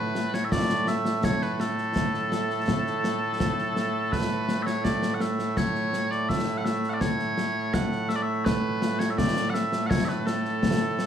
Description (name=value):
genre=scottish traditional, Scottish pipe music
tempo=83 BPM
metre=3/4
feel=straight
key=A major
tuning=A4 = 441 Hz
part: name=mellow small bagpipes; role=melody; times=0.0-11.1 s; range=A2 to F#5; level=-26 LUFS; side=right 1 dB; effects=none
part: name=concert snare drum and concert bass drum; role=drums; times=0.2-11.1 s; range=none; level=-28 LUFS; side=left 1 dB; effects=none
room=light reverb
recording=studio ambience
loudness=-24 LUFS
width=side -9 dB against mid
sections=0.0-4.1 A section; 4.1-11.1 A section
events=none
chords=none